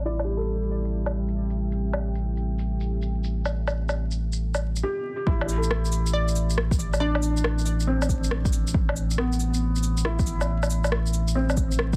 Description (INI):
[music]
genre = future garage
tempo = 138 BPM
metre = 4/4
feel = swing 66% on 16ths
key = A minor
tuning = A4 = 443 Hz
[part]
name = felt-muted upright piano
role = accompaniment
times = 0.0-12.0 s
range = B3 to A4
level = -33 LUFS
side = equal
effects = sidechain pumping, analog delay
[part]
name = deep dark ambient pad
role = sustained chords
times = 0.0-4.8 s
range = C4 to G5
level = -37 LUFS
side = equal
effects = chorus, built-in reverb, sidechain pumping
[part]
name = warm sub bass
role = bass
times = 0.0-12.0 s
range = A1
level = -28 LUFS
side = equal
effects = sidechain pumping
[part]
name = hollow square pluck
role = melody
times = 0.1-0.4, 6.1-7.4 s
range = D5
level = -36 LUFS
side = equal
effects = chorus, analog delay
[part]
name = electronic woodblock, shaker, cabasa and rim click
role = drums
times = 0.2-12.0 s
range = none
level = -32 LUFS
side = equal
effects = overdrive
[part]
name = electronic kick drum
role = drums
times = 5.3-12.0 s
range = none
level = -27 LUFS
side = equal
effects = overdrive
[sound]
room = little or no reverb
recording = dense, heavily limited modern master, vinyl crackle, low-pass filter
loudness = -25 LUFS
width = mono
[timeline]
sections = 0.0-5.3 A section; 5.3-12.0 B section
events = filter sweep on ambient pad 0.0-5.3; filter sweep 0.0-5.3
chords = 0.0 Am7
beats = | 0.05 0.49 0.92 1.36 | 1.79 2.23 2.66 3.10 | 3.53 3.97 4.40 4.83 | 5.27 5.71 6.14 6.57 | 7.01 7.44 7.88 8.31 | 8.75 9.18 9.62 10.05 | 10.49 10.92 11.36 11.79